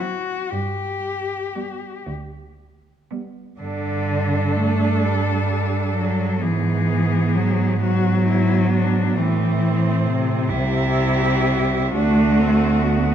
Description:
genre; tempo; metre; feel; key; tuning
classical, lyrical piece for cello ensemble; 38-47 BPM (dotted quarters); 6/8; rubato; G major; A4 = 440 Hz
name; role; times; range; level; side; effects
clear cello; melody; 0.0-13.1 s; C4 to A4; -27 LUFS; left 7 dB; none
rich cello; second line; 0.0-13.1 s; B3 to E4; -26 LUFS; right 8 dB; none
rich cello; accompaniment; 0.0-13.1 s; C3 to A3; -21 LUFS; left 1 dB; none
rich cello; bass; 0.0-13.1 s; C2 to A2; -23 LUFS; right 3 dB; none
room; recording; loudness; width
wet recital hall reverb, RT60 1.7 s; dark, warm production; -18 LUFS; side -9 dB against mid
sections
0.0-3.6 A section; 3.6-13.1 A section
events
none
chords
0.0 D7; 0.5 G; 3.6 G5; 6.4 E/G#; 9.2 Am7; 11.9 D7

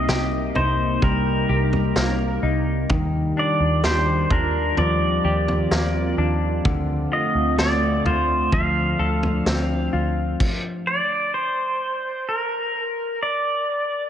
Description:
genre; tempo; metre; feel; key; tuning
dream pop; 64 BPM; 4/4; straight; unclear; A4 = 440 Hz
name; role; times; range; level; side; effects
pedal steel guitar; melody; 0.0-14.1 s; Bb4 to F5; -23 LUFS; equal; tape echo
warbly tape-like pad; sustained chords; 0.0-10.4 s; C3 to F4; -27 LUFS; equal; chorus, built-in reverb
semi-hollow electric guitar; arpeggios; 0.0-11.0 s; C3 to A4; -26 LUFS; left 3 dB; wide subtle chorus, tape echo
vintage muted picked electric bass; bass; 0.0-10.3 s; C2 to Eb2; -24 LUFS; equal; none
vintage drum kit; drums; 0.1-10.6 s; crash cymbal, kick drum, snare drum, toms; -25 LUFS; equal; none
room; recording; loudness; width
moderate scoring stage reverb, RT60 2.0 s, small room ambience; nothing above 10.5 kHz; -19 LUFS; side -10 dB against mid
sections
0.0-14.1 A section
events
stop 10.4-14.1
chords
0.0 Cm7; 2.9 Ebmaj9; 6.7 Dm7; 10.4 N.C.

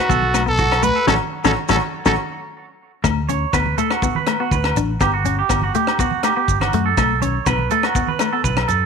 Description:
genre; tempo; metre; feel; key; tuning
highlife guitar band; 122 BPM; 4/4; straight; D major; A4 = 440 Hz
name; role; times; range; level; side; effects
growling trumpet; melody; 0.0-2.1 s; F#4 to B4; -20 LUFS; left 1 dB; none
clean electric guitar; arpeggios; 0.0-8.9 s; F#4 to C#5; -21 LUFS; right 12 dB; tape echo
semi-hollow electric guitar; accompaniment; 0.1-8.5 s; F#3 to D4; -24 LUFS; left 13 dB; none
fingered electric bass; bass; 0.1-8.9 s; G1 to F#2; -22 LUFS; left 1 dB; none
tight funk drum kit; drums; 0.1-8.8 s; hi-hat, kick drum, rim click, snare drum; -24 LUFS; equal; none
congas; percussion; 0.1-8.8 s; none; -30 LUFS; right 7 dB; none
maracas; percussion; 0.1-8.8 s; none; -32 LUFS; right 15 dB; none
agogo bells; percussion; 0.3-8.7 s; none; -26 LUFS; left 16 dB; none
room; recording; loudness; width
light reverb; 1960s-style stereo with parts hard left and right; -16 LUFS; side -6 dB against mid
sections
0.0-3.0 A section; 3.0-8.9 B section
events
band accent 1.1-3.0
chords
0.0 B5; 1.1 A6; 3.0 D; 5.0 Gmaj7; 7.0 B5

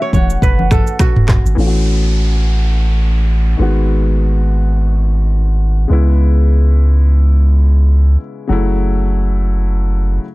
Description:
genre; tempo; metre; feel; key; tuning
afrobeats; free time; none; none; F# dorian; A4 = 442 Hz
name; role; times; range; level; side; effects
warm velvety synth lead; melody; 0.0-1.3 s; E5 to F#5; -22 LUFS; right 1 dB; chorus, ping-pong delay
warm grand piano; accompaniment; 0.0-10.3 s; C#3 to F#4; -21 LUFS; left 3 dB; low-pass filter
kora; riff; 0.0-2.5 s; F#4 to C#5; -22 LUFS; right 5 dB; none
punchy sub bass; bass; 0.1-10.2 s; E1 to C#2; -12 LUFS; equal; none
afro-pop drum kit; drums; 0.1-1.6 s; finger snaps, handclaps, kick drum, rim click, shaker, toms; -12 LUFS; equal; none
congas; percussion; 0.1-1.4 s; none; -21 LUFS; left 2 dB; none
downlifter; sound effects; 1.6-6.2 s; none; -29 LUFS; equal; none
room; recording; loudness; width
little or no reverb; dark, warm production; -11 LUFS; side -21 dB against mid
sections
0.0-1.6 A section; 1.6-10.3 B section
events
filter sweep on grand piano 1.6-10.3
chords
0.0 F#m7; 1.6 A6; 3.6 G#m7; 5.9 C#m7; 8.5 F#m7

